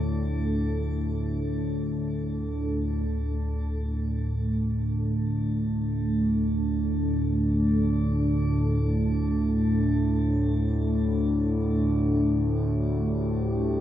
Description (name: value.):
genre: dark ambient drone.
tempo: free time.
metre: none.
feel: none.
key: unclear.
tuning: A4 = 438 Hz.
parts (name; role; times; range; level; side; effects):
deep dark ambient pad; sustained chords; 0.0-13.8 s; A3 to A4; -28 LUFS; right 1 dB; chorus, built-in reverb, shimmer reverb.
analog drone; drone; 0.0-13.8 s; D2 to A2; -26 LUFS; equal; chorus.
room: wet huge ambient reverb, RT60 8.4 s.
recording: dark, warm production.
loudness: -24 LUFS.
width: side -11 dB against mid.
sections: 0.0-3.1 A section; 3.1-13.8 B section.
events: none.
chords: 0.0 D5.